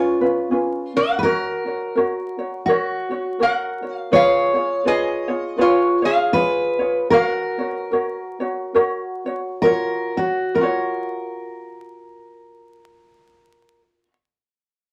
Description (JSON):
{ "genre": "Hawaiian", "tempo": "62-83 BPM", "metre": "4/4", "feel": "swing 59% on 8ths", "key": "F# major", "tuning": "A4 = 441 Hz", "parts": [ { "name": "metal-body resonator slide guitar", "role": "melody", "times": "0.0-9.6 s", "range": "E#4 to F#5", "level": "-23 LUFS", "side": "equal", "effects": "none" }, { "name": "picked steel-string acoustic guitar", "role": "second line", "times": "0.0-13.8 s", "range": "F#4 to C#5", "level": "-24 LUFS", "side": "equal", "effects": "none" }, { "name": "ukulele", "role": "accompaniment", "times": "0.0-14.1 s", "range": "C#4 to C#5", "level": "-24 LUFS", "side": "equal", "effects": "none" } ], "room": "wet small room reverb, RT60 0.6 s", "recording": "vinyl crackle", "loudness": "-20 LUFS", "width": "mono", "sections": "0.0-4.1 A section; 4.1-10.6 B section; 10.6-14.4 C section", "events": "slowing down 4.1-10.6", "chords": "0.0 C#7; 1.2 F#; 4.1 C#7; 7.1 F#maj7" }